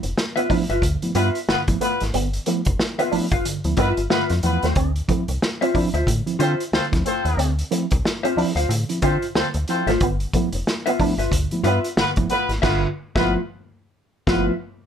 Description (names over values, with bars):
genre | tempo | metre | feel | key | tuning
funk | 91 BPM | 4/4 | swing 60% on 16ths | unclear | A4 = 440 Hz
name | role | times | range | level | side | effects
electric guitar with an envelope filter | riff | 0.0-12.4 s | A3 to D4 | -26 LUFS | right 2 dB | ensemble chorus
mellow tine electric piano | stabs | 0.0-14.5 s | G2 to E4 | -26 LUFS | right 3 dB | fast stereo tremolo
metallic FM bass | bass | 0.0-14.5 s | F1 to D3 | -24 LUFS | equal | none
vintage drum kit | drums | 0.0-14.5 s | crash cymbal, hi-hat, kick drum, snare drum | -24 LUFS | equal | none
mellow electric guitar | accompaniment | 0.4-14.5 s | F4 to F5 | -23 LUFS | left 2 dB | lush chorus
clear horn section | second line | 1.1-14.5 s | B3 to C5 | -24 LUFS | left 2 dB | none
room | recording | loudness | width
light reverb | none | -19 LUFS | side -8 dB against mid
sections
0.0-14.9 A section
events
band accent 12.6-14.9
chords
0.0 G13; 4.8 Dm9; 10.0 G13